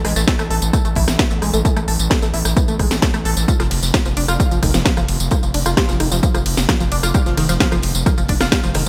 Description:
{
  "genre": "driving peak-time techno",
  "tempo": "131 BPM",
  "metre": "4/4",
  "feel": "straight",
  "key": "unclear",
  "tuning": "A4 = 440 Hz",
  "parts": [
    { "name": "tight sequenced synth", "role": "riff", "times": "0.0-8.9 s", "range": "D#3 to A4", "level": "-26 LUFS", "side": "equal", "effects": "chorus, phaser, sidechain pumping, digital delay" },
    { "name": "gritty driven synth bass", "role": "bass", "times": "0.0-8.9 s", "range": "F1 to A1", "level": "-23 LUFS", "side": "equal", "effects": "sidechain pumping" },
    { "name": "compact cocktail drum kit", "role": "drums", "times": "0.0-8.9 s", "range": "hi-hat, snare drum", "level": "-37 LUFS", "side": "equal", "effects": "none" },
    { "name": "techno drum kit", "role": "drums", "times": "0.0-8.9 s", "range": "hi-hat, ride cymbal, rim click, snare drum, tambourine", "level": "-23 LUFS", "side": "equal", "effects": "sidechain pumping on hats, sidechain pumping on cymbals, sidechain pumping on perc" },
    { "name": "electronic kick drum", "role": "drums", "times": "0.3-8.6 s", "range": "none", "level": "-20 LUFS", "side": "equal", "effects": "none" }
  ],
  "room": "light reverb",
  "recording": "bright 1980s-style digital production",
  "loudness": "-17 LUFS",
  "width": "mono",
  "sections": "0.0-8.9 A section",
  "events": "none",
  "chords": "0.0 A5; 3.5 N.C."
}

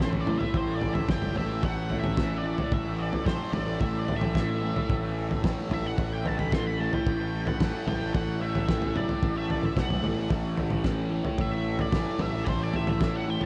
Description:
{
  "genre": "psychedelic rock",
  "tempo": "111 BPM",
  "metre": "4/4",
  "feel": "straight",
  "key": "unclear",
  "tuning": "A4 = 444 Hz",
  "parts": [
    { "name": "octave-fuzz lead guitar", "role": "melody", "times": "0.0-13.5 s", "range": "B4 to C6", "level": "-37 LUFS", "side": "equal", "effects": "wah, distortion, tape echo" },
    { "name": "fuzz guitar", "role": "riff", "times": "0.0-13.5 s", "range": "A2 to A3", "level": "-34 LUFS", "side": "equal", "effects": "distortion, phaser" },
    { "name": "fuzz picked electric bass", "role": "bass", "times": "0.0-13.4 s", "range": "G1 to B1", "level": "-34 LUFS", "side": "equal", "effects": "overdrive" },
    { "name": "cloth-damped thuddy drum kit", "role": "drums", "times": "0.0-13.5 s", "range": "kick drum, snare drum, toms", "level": "-32 LUFS", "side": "equal", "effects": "none" }
  ],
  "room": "moderate huge ambient reverb, RT60 7.9 s",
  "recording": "dreamy mix soaked in reverb, nothing above 10.9 kHz",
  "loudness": "-28 LUFS",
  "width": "mono",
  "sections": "0.0-13.5 A section",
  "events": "lead electric guitar solo 0.0-13.5",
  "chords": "0.0 A5"
}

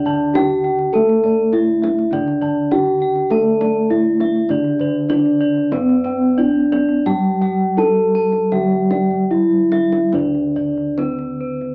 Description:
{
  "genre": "Javanese gamelan",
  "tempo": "70-102 BPM",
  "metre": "4/4",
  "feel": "straight",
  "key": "D slendro",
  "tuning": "A4 = 437 Hz",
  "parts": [
    { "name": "gamelan-type bronze metallophone", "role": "melody", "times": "0.0-11.7 s", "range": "C4-45c to A4+25c", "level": "-19 LUFS", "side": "equal", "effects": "cassette tape" },
    { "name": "gamelan-type bronze metallophone", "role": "accompaniment", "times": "0.0-11.7 s", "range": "D3 to C4-45c", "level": "-24 LUFS", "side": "equal", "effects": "cassette tape" },
    { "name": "gamelan-type bossed gongs", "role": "arpeggios", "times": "0.0-11.5 s", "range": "C5-45c to A5+25c", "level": "-32 LUFS", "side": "equal", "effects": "cassette tape" },
    { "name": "gamelan-type bronze metallophone", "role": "arpeggios", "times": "0.0-11.7 s", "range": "C5-45c to A5+25c", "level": "-28 LUFS", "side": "equal", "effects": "cassette tape" },
    { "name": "gamelan-type bossed gongs", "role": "bass", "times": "0.0-11.7 s", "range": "D2 to G4-35c", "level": "-31 LUFS", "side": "equal", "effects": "none" },
    { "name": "kendang", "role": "percussion", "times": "0.1-11.7 s", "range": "none", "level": "-30 LUFS", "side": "equal", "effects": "none" }
  ],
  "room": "wet studio reverb, RT60 0.5 s",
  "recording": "home recording on cassette, AM radio sound",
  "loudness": "-17 LUFS",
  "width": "mono",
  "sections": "0.0-10.1 A section; 10.1-11.7 B section",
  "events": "drum fill 9.1-10.1",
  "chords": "none"
}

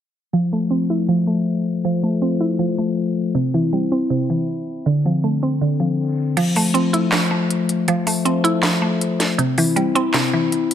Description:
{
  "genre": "hip hop, trap",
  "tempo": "159 BPM",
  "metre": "4/4",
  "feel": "half-time",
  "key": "F major",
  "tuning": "A4 = 438 Hz",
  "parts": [
    { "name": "mallet-like synth pluck", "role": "accompaniment", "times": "0.3-10.7 s", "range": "C3 to E4", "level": "-20 LUFS", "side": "right 4 dB", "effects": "chorus, low-pass filter" },
    { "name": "mellow tine electric piano", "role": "arpeggios", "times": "0.3-10.7 s", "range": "D3 to E4", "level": "-20 LUFS", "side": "left 4 dB", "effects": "phaser, low-pass filter, ping-pong delay" },
    { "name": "trap drum kit", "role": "drums", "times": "6.4-10.7 s", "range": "crash cymbal, handclaps, hi-hat, snare drum", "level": "-22 LUFS", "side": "equal", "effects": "none" }
  ],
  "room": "light reverb, digital ambience",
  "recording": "low-pass filter",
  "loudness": "-17 LUFS",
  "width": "side -9 dB against mid",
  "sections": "0.3-6.4 A section; 6.4-10.7 B section",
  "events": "filter sweep 0.3-6.4; kick muted 6.4-10.7",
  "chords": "0.3 Fmaj7; 3.4 C; 4.9 Dm7; 6.4 Fmaj7; 9.4 C"
}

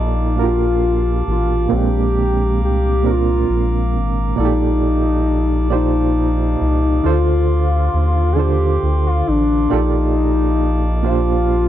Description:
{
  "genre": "slow six-eight R&B",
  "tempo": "45 BPM (dotted quarters)",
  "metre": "6/8",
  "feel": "straight",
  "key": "unclear",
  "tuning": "A4 = 440 Hz",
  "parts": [
    { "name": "gliding portamento lead", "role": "melody", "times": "0.0-11.7 s", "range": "D4 to A4", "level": "-19 LUFS", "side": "left 3 dB", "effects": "chorus" },
    { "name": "bright reed electric piano", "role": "accompaniment", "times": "0.0-11.7 s", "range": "Bb2 to D5", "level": "-21 LUFS", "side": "right 8 dB", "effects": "fast tremolo" },
    { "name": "glass harmonica", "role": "sustained chords", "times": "0.0-11.7 s", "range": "Ab3 to D6", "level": "-27 LUFS", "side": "equal", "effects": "none" },
    { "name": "round analog bass", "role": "bass", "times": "0.0-11.7 s", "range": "Ab1 to Eb2", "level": "-18 LUFS", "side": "equal", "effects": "none" }
  ],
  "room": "little or no reverb",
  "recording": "dry, close 1970s-style studio recording",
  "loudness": "-14 LUFS",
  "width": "side -12 dB against mid",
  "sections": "0.0-11.7 A section",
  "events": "none",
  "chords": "0.0 Ebmaj9#11/Bb; 1.7 Bb7; 4.4 Ebmaj9#11/Bb; 7.0 Dm7; 9.7 Ebmaj9#11/Bb"
}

